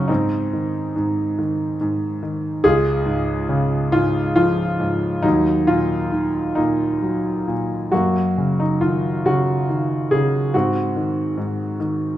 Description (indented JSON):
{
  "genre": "classical, lyrical solo piano",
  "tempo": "46 BPM (dotted quarters)",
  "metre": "6/8",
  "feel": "rubato",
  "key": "Db major",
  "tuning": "A4 = 439 Hz",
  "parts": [
    { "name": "warm grand piano", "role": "solo", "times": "0.0-12.2 s", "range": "Db2 to Ab4", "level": "-18 LUFS", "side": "equal", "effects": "none" }
  ],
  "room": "moderate recital hall reverb, RT60 1.4 s",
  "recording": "dark, warm production",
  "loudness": "-18 LUFS",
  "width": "side -13 dB against mid",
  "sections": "0.0-12.2 A section",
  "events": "grand piano fill 11.8-12.2",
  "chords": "0.1 Ab; 2.6 Db; 5.2 Ebm; 7.9 Gb6; 10.5 Ab7",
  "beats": "| 0.10 1.38 | 2.64 3.93 | 5.24 6.57 | 7.92 9.26 | 10.54 11.80"
}